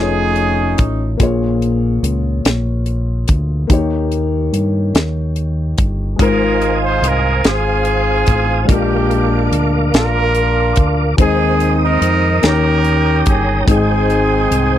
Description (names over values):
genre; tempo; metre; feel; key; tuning
slow gospel; 48 BPM (dotted quarters); 6/8; straight; Ab major; A4 = 441 Hz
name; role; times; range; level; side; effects
clear horn section; melody; 0.0-1.2, 6.2-14.8 s; C4 to C5; -17 LUFS; equal; none
dark grand piano; accompaniment; 0.0-14.8 s; Ab2 to C#5; -20 LUFS; left 4 dB; none
fingered electric bass; bass; 0.0-14.8 s; F1 to G2; -17 LUFS; equal; none
tight funk drum kit; drums; 0.4-14.7 s; hi-hat, kick drum, snare drum; -14 LUFS; equal; none
tonewheel organ; sustained chords; 6.2-14.8 s; Bb4 to Eb6; -21 LUFS; right 2 dB; slow rotary speaker, chorus vibrato
room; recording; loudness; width
little or no reverb; dry, close 1970s-style studio recording; -13 LUFS; side -11 dB against mid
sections
0.0-14.8 A section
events
none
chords
0.0 F7alt; 1.2 Bbm7; 3.7 Eb7; 6.2 Ab6; 8.7 Bb7; 11.2 Ab/Eb; 12.4 Eb7; 13.7 Abmaj7